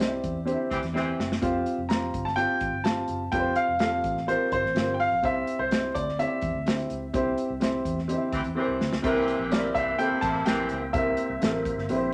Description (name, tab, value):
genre	uptempo 1960s-style soul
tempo	126 BPM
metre	4/4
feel	straight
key	unclear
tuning	A4 = 439 Hz
part	bright grand piano	melody	0.0-11.8 s	C5 to Bb5	-30 LUFS	equal	none
part	dark upright piano	accompaniment	0.0-12.1 s	C4 to D5	-30 LUFS	equal	none
part	vintage muted fingered electric bass	bass	0.0-12.1 s	F1 to E2	-38 LUFS	equal	none
part	natural country drum kit	drums	0.0-12.0 s	hi-hat, kick drum, snare drum	-33 LUFS	equal	none
part	warm horn section	second line	0.7-1.3, 8.3-10.8 s	C3 to Bb4	-35 LUFS	equal	none
part	percussive tonewheel organ	sustained chords	9.0-12.1 s	Bb3 to E5	-39 LUFS	equal	slow rotary speaker, overdrive, chorus vibrato
room	wet studio reverb, RT60 0.8 s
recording	none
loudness	-27 LUFS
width	mono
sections	0.0-9.0 A section; 9.0-12.1 B section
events	band accent 0.0-1.4, 7.1-9.0; drum fill 1.0-1.4, 8.6-9.0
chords	0.0 C; 1.4 Fsus2; 5.2 C; 9.0 C7